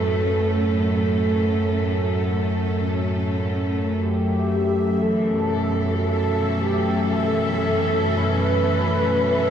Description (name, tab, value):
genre	ambient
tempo	free time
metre	none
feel	none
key	unclear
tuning	A4 = 439 Hz
part	mellow horn-like synth lead	melody	0.0-9.5 s	G4 to B4	-25 LUFS	right 1 dB	lush chorus, diffuse ambient delay
part	clear studio cello section	sustained chords	0.0-9.5 s	F#2 to A4	-25 LUFS	left 1 dB	none
part	analog drone	drone	0.0-9.5 s	F#2 to A3	-22 LUFS	equal	chorus
part	bubbling stepped-filter texture	texture	4.1-9.5 s	E5	-30 LUFS	right 1 dB	chorus, built-in reverb
room	wet huge ambient reverb, RT60 7.8 s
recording	dark, warm production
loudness	-19 LUFS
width	side -8 dB against mid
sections	0.0-9.5 A section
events	none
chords	0.0 F#m; 4.0 Aadd9/F#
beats	free time